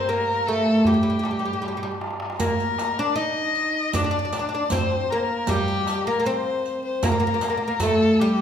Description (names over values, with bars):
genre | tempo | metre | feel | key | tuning
Arabic maqam ensemble | 78 BPM | 4/4 | straight | G minor | A4 = 440 Hz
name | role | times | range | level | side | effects
oud | melody | 0.0-8.4 s | G3 to Eb4 | -23 LUFS | equal | none
dark violin | second line | 0.0-8.4 s | G4 to Eb5 | -25 LUFS | left 4 dB | none
clear studio cello section | drone | 0.0-2.5 s | G2 | -36 LUFS | right 1 dB | none
darbuka | percussion | 0.1-8.3 s | none | -28 LUFS | right 3 dB | none
riq | percussion | 2.4-8.0 s | none | -33 LUFS | right 2 dB | none
room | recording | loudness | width
wet recital hall reverb, RT60 1.6 s | minimal, uncompressed stereo recording | -20 LUFS | side -8 dB against mid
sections
0.0-2.4 A section; 2.4-8.4 B section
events
drum fill 1.6-2.4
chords
none